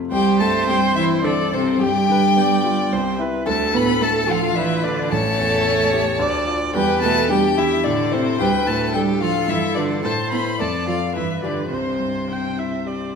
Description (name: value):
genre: quick classical-period movement for piano quintet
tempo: 109 BPM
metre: 3/4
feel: straight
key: C major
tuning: A4 = 441 Hz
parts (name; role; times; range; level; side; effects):
- clear concert grand piano; accompaniment; 0.0-13.2 s; A1 to E5; -24 LUFS; left 2 dB; none
- warm violin; melody; 0.1-13.1 s; C5 to B5; -23 LUFS; left 7 dB; none
- clear violin; second line; 0.1-13.1 s; C4 to B4; -26 LUFS; left 3 dB; none
- rich cello; second line; 0.1-13.1 s; C3 to B3; -23 LUFS; right 6 dB; none
- rich viola; accompaniment; 0.1-13.2 s; G4 to G5; -24 LUFS; right 4 dB; none
room: wet recital hall reverb, RT60 1.5 s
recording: none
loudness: -17 LUFS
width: side -6 dB against mid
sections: 0.1-13.2 A section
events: none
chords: 0.1 C; 1.8 G7; 2.9 C; 3.5 Dm; 5.1 A7; 6.2 Dm; 6.7 Em7; 7.8 Am; 8.4 Dm; 9.5 G7; 10.0 Am; 10.6 Dm/F; 11.2 G7; 11.7 C